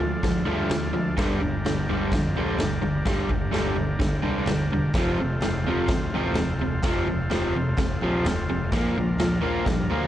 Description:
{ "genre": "garage rock duo or trio", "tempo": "127 BPM", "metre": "4/4", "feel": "straight", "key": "unclear", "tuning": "A4 = 441 Hz", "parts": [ { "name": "combo organ", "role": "sustained chords", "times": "0.0-10.1 s", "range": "C4 to Bb4", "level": "-34 LUFS", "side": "equal", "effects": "none" }, { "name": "overdriven electric guitar", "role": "riff", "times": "0.0-10.1 s", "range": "F2 to Bb3", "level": "-25 LUFS", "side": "equal", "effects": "none" }, { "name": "fuzz fingered electric bass", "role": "bass", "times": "0.0-10.1 s", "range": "E1 to G2", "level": "-31 LUFS", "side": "equal", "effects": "overdrive" }, { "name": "raw garage drum kit", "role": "drums", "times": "0.0-10.0 s", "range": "kick drum, snare drum, toms", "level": "-27 LUFS", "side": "equal", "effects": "vintage 12-bit sampler grit" } ], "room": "moderate spring reverb, RT60 1.9 s", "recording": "cassette tape", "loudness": "-22 LUFS", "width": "side -12 dB against mid", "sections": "0.0-10.1 A section", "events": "none", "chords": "0.0 Dm; 1.2 Gm; 5.0 F; 8.7 Bb", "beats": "0.23 0.71 | 1.18 1.65 2.12 2.60 | 3.07 3.54 4.01 4.49 | 4.96 5.43 5.90 6.37 | 6.84 7.32 7.79 8.26 | 8.73 9.20 9.67" }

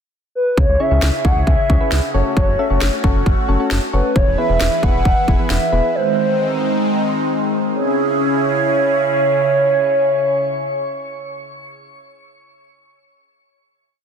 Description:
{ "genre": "synth-pop", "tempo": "134 BPM", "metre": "4/4", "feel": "straight", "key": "C# minor", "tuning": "A4 = 441 Hz", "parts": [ { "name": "hollow clarinet-like synth lead", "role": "melody", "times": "0.4-11.9 s", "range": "B4 to F#5", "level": "-19 LUFS", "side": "right 1 dB", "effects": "chorus, ping-pong delay, shimmer reverb" }, { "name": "phased analog pad", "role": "sustained chords", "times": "0.6-11.9 s", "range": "C#3 to B4", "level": "-20 LUFS", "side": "right 1 dB", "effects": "phaser, chorus, shimmer reverb" }, { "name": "round analog bass", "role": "bass", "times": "0.6-5.8 s", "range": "E1 to C#2", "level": "-18 LUFS", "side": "equal", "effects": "none" }, { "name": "house drum kit", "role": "drums", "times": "0.6-5.6 s", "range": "kick drum, snare drum", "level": "-18 LUFS", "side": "equal", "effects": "none" }, { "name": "soft electric-piano-like synth keys", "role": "accompaniment", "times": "0.8-5.9 s", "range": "B3 to E5", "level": "-24 LUFS", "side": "left 4 dB", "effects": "chorus, shimmer reverb" } ], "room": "moderate concert hall reverb, RT60 2.0 s, digital ambience", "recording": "dense, heavily limited modern master", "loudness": "-14 LUFS", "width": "side -7 dB against mid", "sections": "0.0-0.6 pickup bar; 0.6-7.7 verse; 7.7-11.3 final chord", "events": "none", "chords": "0.0 N.C.; 0.6 C#m; 2.1 F#m; 4.2 E; 5.9 G#/D#; 7.7 C#m", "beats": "0.13 | 0.57 1.02 1.47 1.92 | 2.37 2.81 3.26 3.71 | 4.16 4.61 5.05 5.50 | 5.95 6.40 6.84 7.29 | 7.74 8.19 8.63 9.08 | 9.53 9.98 10.43 10.87" }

